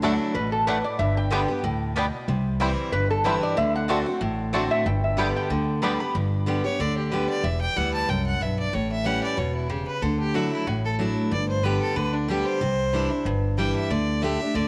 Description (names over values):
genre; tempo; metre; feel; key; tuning
bluegrass; 186 BPM; 4/4; swing 54% on 8ths; G major; A4 = 441 Hz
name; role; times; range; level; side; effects
picked steel-string acoustic guitar; accompaniment; 0.0-14.7 s; E2 to G4; -29 LUFS; equal; cassette tape
bluegrass banjo; arpeggios; 0.0-5.9 s; G3 to E4; -34 LUFS; equal; cassette tape
mandolin; stabs; 0.0-5.9 s; A3 to A5; -35 LUFS; equal; cassette tape
upright bass; bass; 0.0-14.7 s; E1 to D2; -30 LUFS; equal; none
lap resonator guitar; second line; 0.3-6.1 s; A4 to B5; -29 LUFS; equal; cassette tape
clear fiddle; melody; 6.6-14.7 s; D4 to A5; -31 LUFS; equal; none
room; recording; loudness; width
light reverb, studio ambience; home recording on cassette; -25 LUFS; mono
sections
0.0-6.1 A section; 6.1-14.7 B section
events
resonator guitar played with a steel bar solo 0.0-6.1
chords
0.0 Dadd9; 1.0 G; 2.3 C; 3.6 D7; 4.9 G; 7.4 Em; 8.7 A7; 10.0 Dadd9; 11.3 G; 12.6 Cadd9; 13.9 Dsus4